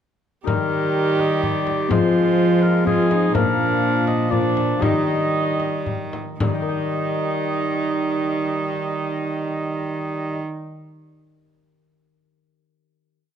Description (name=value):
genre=classical, renaissance-style consort dance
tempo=111-126 BPM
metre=3/4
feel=straight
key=Eb major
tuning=A4 = 439 Hz
part: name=Celtic harp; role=accompaniment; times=0.4-11.1 s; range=Bb2 to G5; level=-27 LUFS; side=left 12 dB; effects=none
part: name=mellow oboe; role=melody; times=0.5-10.4 s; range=Ab4 to Eb5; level=-27 LUFS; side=left 3 dB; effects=none
part: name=warm viola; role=second line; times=0.5-10.4 s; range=D4 to G4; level=-25 LUFS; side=right 5 dB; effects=none
part: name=mellow bassoon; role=accompaniment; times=0.5-10.4 s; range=F3 to Ab3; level=-27 LUFS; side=left 1 dB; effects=none
part: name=clear cello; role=bass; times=0.5-10.4 s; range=Bb2 to F3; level=-24 LUFS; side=right 2 dB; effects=none
part: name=frame drum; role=percussion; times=0.5-6.7 s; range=none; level=-27 LUFS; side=left 2 dB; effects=none
room=moderate recital hall reverb, RT60 1.7 s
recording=close, detailed microphones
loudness=-18 LUFS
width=side -8 dB against mid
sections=0.5-6.4 A section; 6.4-9.7 final chord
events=slowing down 2.6-6.4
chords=0.5 Eb; 1.9 Fm; 3.3 Bb; 4.8 Eb